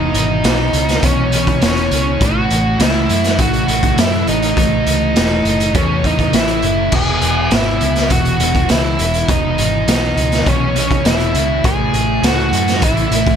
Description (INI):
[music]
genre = rock, shoegaze and dream pop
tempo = 102 BPM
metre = 4/4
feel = straight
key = E major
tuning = A4 = 440 Hz
[part]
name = octave-fuzz lead guitar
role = melody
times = 0.0-13.4 s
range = C#4 to G#4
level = -19 LUFS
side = right 2 dB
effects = distortion, analog delay
[part]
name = fuzz guitar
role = riff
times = 0.0-13.4 s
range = E2 to A3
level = -18 LUFS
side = equal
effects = distortion, wide subtle chorus
[part]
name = vintage muted fingered electric bass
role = bass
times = 0.0-13.4 s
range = E1 to F#2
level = -20 LUFS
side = equal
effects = none
[part]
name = raw garage drum kit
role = drums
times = 0.1-13.4 s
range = crash cymbal, hi-hat, kick drum, snare drum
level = -17 LUFS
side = equal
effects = none
[sound]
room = studio reverb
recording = none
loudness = -12 LUFS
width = side -8 dB against mid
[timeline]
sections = 0.0-13.4 A section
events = none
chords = 0.0 E6; 2.2 A5; 6.9 E5; 11.6 A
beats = 0.44 1.03 1.62 | 2.21 2.80 3.39 3.98 | 4.57 5.16 5.75 6.34 | 6.93 7.52 8.11 8.70 | 9.29 9.88 10.47 11.06 | 11.65 12.24 12.83